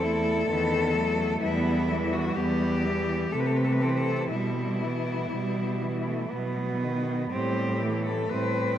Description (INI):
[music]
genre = classical, lyrical piece for cello ensemble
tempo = 59-64 BPM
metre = 3/4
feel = rubato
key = E minor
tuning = A4 = 441 Hz
[part]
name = clear cello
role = melody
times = 0.0-8.8 s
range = E4 to B4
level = -30 LUFS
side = left 4 dB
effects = none
[part]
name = rich cello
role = second line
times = 0.0-8.8 s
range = G3 to E4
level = -31 LUFS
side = right 3 dB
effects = none
[part]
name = warm cello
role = accompaniment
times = 0.0-8.8 s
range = C3 to A3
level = -32 LUFS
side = left 2 dB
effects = none
[part]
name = warm cello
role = bass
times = 0.0-8.8 s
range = E2 to C3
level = -30 LUFS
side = right 2 dB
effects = none
[sound]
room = wet cathedral reverb, RT60 4.9 s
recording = in a vast, echoing space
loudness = -24 LUFS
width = side -10 dB against mid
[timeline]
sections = 0.0-8.8 A section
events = none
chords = 0.5 B7/E; 1.4 Em; 3.3 Am/C; 4.3 Em/B; 6.3 B; 7.3 Am7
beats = 0.50 | 1.43 2.37 3.33 | 4.33 5.33 6.32 | 7.33 8.32